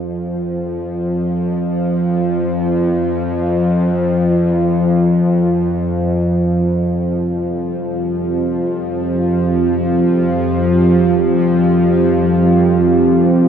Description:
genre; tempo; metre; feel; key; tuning
dark ambient drone; free time; none; none; unclear; A4 = 439 Hz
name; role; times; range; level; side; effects
bowed-like drone; drone; 0.0-13.5 s; F2 to F3; -14 LUFS; equal; built-in reverb
deep dark ambient pad; sustained chords; 7.0-13.5 s; C4 to G4; -17 LUFS; right 2 dB; chorus, built-in reverb
room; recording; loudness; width
wet cathedral reverb, RT60 5.5 s; worn, warbling old tape, cassette tape, warbly pitch drift; -13 LUFS; side -8 dB against mid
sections
0.0-13.5 A section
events
none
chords
0.0 Fsus2

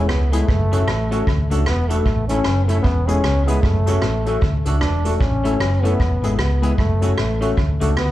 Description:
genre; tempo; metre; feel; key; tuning
ska; 152 BPM; 4/4; swing 61% on 8ths; A major; A4 = 440 Hz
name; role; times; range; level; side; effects
warm trombone; melody; 0.0-8.1 s; A3 to D4; -24 LUFS; left 1 dB; tape echo, plate reverb, slapback echo
clean electric guitar; accompaniment; 0.0-7.9 s; G#3 to F#4; -30 LUFS; right 3 dB; plate reverb, slapback echo
dark upright piano; stabs; 0.0-7.9 s; G#3 to A4; -25 LUFS; left 5 dB; tape echo, plate reverb, slapback echo
hollow-body short-scale fingered electric bass; bass; 0.0-8.1 s; E1 to D2; -19 LUFS; equal; none
vintage brush drum kit; drums; 0.1-8.1 s; hi-hat, kick drum, rim click; -23 LUFS; equal; tape echo
room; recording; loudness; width
little or no reverb; live gig heard through the venue's PA, club reverb; -16 LUFS; side -14 dB against mid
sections
0.0-8.1 A section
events
none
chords
0.5 F#m; 1.3 D; 2.1 A; 2.8 E; 3.6 F#m; 4.4 D; 5.2 A; 6.0 E; 6.8 F#m; 7.6 D

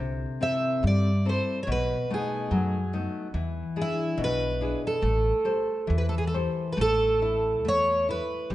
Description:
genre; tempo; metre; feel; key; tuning
fado-style ballad; 70 BPM; 2/4; rubato; A minor; A4 = 440 Hz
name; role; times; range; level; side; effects
nylon-string guitar; accompaniment; 0.0-8.5 s; B2 to C5; -30 LUFS; left 3 dB; none
upright bass; bass; 0.0-8.5 s; G1 to G2; -29 LUFS; equal; none
fingerpicked twelve-string acoustic guitar; melody; 0.4-8.5 s; E4 to E5; -26 LUFS; right 1 dB; none
room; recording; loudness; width
moderate recital hall reverb, RT60 1.7 s; nothing above 10.6 kHz; -24 LUFS; side -15 dB against mid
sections
0.0-6.8 A section; 6.8-8.5 B section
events
none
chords
0.0 C6; 1.7 B7; 3.4 E7; 5.0 Am7; 6.8 A5

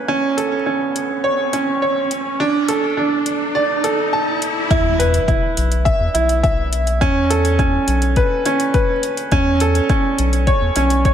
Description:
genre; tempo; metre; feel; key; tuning
piano and strings electronica; 104 BPM; 4/4; straight; unclear; A4 = 438 Hz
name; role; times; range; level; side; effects
bright baby grand piano; riff; 0.0-11.1 s; C#4 to A5; -17 LUFS; right 2 dB; digital delay
riser and impact; sound effects; 0.0-7.0 s; none; -25 LUFS; left 1 dB; none
round analog bass; bass; 0.1-11.1 s; B1 to E2; -19 LUFS; left 1 dB; sidechain pumping, high-pass filter
electronic hi-hat; drums; 0.4-11.1 s; none; -27 LUFS; left 1 dB; none
electronic kick drum; drums; 4.7-11.1 s; none; -18 LUFS; left 1 dB; none
room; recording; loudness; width
light reverb, digital ambience; none; -15 LUFS; side -9 dB against mid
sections
0.0-4.7 A section; 4.7-11.1 B section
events
build-up 0.0-4.7; riser 0.0-4.7; drop 4.7-11.1; impact 4.7-7.0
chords
0.0 B9sus4; 2.4 D5; 4.7 E5; 7.0 B9sus4

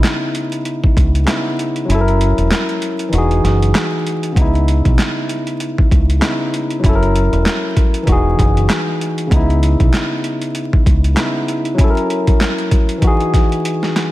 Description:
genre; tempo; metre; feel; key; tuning
hip hop, boom-bap hip-hop; 97 BPM; 4/4; swing 57% on 16ths; C# dorian; A4 = 440 Hz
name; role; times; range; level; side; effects
barky tine electric piano; accompaniment; 0.0-14.1 s; C#3 to A#4; -18 LUFS; left 1 dB; high-pass filter, low-pass filter
deep dub fingered electric bass; bass; 0.0-11.1 s; E1 to C#2; -14 LUFS; equal; none
boom bap sampler-style drum kit; drums; 0.0-14.1 s; handclaps, hi-hat, kick drum, snare drum; -16 LUFS; equal; overdrive
room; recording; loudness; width
light reverb; vinyl crackle; -13 LUFS; side -16 dB against mid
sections
0.0-14.1 A section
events
kick muted 1.9-4.4; drum fill 13.6-14.1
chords
0.0 C#m9; 1.9 F#7; 3.1 Emaj9; 4.4 C#m9; 6.8 F#7; 8.1 Emaj9; 9.3 C#m9; 11.8 F#7; 13.0 Emaj9

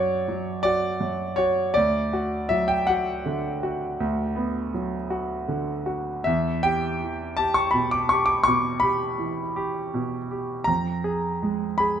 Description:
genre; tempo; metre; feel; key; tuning
classical, romantic nocturne for solo piano; 54 BPM (dotted quarters); 12/8; rubato; B minor; A4 = 440 Hz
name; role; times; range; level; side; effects
clear concert grand piano; solo; 0.0-12.0 s; D2 to D6; -22 LUFS; equal; none
room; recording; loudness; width
moderate large studio reverb, RT60 0.8 s; none; -22 LUFS; side -9 dB against mid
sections
0.0-12.0 A section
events
none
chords
0.0 Bm (rootless); 1.7 Bm/D; 6.3 Em; 10.7 C#7/E# (rootless)

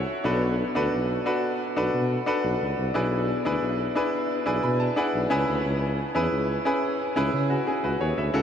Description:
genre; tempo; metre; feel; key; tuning
1980s-style pop; 89 BPM; 4/4; straight; unclear; A4 = 441 Hz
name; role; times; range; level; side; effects
bright grand piano; accompaniment; 0.0-8.4 s; B2 to B5; -24 LUFS; equal; none
warm tuba; bass; 0.0-8.4 s; B1 to C#3; -28 LUFS; equal; none
room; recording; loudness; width
wet huge ambient reverb, RT60 8.0 s; dreamy mix soaked in reverb; -23 LUFS; side -8 dB against mid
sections
0.0-8.4 A section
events
grand piano fill 0.0, 4.3-5.6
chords
0.3 Bm7; 3.0 E7/B; 5.3 C#m7

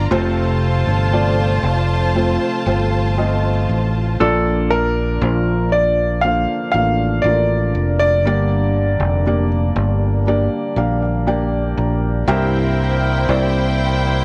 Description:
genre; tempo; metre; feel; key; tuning
pop; 59 BPM; 4/4; straight; Bb major; A4 = 440 Hz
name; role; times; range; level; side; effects
warm studio violin section; second line; 0.0-4.2, 12.3-14.2 s; E4 to A5; -25 LUFS; equal; tape echo
felt-muted upright piano; accompaniment; 0.0-14.2 s; G2 to Bb5; -23 LUFS; equal; none
dark French horn section; sustained chords; 0.0-14.2 s; C3 to C5; -30 LUFS; equal; none
fingered electric bass; bass; 0.0-14.2 s; F1 to C2; -21 LUFS; equal; none
warm concert grand piano; melody; 4.2-9.5 s; A4 to F5; -21 LUFS; equal; none
room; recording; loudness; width
light reverb; none; -17 LUFS; mono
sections
0.0-4.2 A section; 4.2-14.2 A section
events
felt piano fill 10.3-12.3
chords
0.1 F; 4.2 Bbmaj7; 8.3 Gm; 12.3 C7

